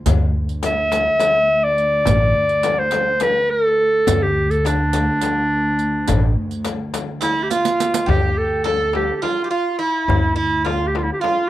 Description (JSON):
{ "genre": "Turkish makam ensemble", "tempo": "210 BPM (eighths)", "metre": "7/8", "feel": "straight", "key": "D makam huseyni", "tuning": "A4 = 440 Hz", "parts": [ { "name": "dark studio cello section", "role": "drone", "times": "0.0-8.1 s", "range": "D2", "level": "-29 LUFS", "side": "equal", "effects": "cassette tape, plate reverb" }, { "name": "upright bass", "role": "bass", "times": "0.1-11.1 s", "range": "A1 to D2", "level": "-20 LUFS", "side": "equal", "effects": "none" }, { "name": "darbuka", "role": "percussion", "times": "0.1-11.4 s", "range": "none", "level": "-25 LUFS", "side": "left 3 dB", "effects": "none" }, { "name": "frame drum", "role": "percussion", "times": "0.1-11.4 s", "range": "none", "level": "-26 LUFS", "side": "left 8 dB", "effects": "none" }, { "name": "riq", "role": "percussion", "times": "0.1-8.1 s", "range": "none", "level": "-26 LUFS", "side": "right 9 dB", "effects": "none" }, { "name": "clear clarinet", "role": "melody", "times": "0.7-11.5 s", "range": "D4 to E5-31c", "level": "-18 LUFS", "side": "equal", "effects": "cassette tape, plate reverb" }, { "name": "Greek bouzouki", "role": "second line", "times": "7.2-11.5 s", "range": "E4-30c to A4", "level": "-23 LUFS", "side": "right 5 dB", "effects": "cassette tape, plate reverb" } ], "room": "moderate studio ambience, RT60 0.5 s", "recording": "home recording on cassette", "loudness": "-16 LUFS", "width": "side -14 dB against mid", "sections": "0.0-8.1 A section; 8.1-11.5 B section", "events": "drum fill 7.5-8.1", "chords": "none" }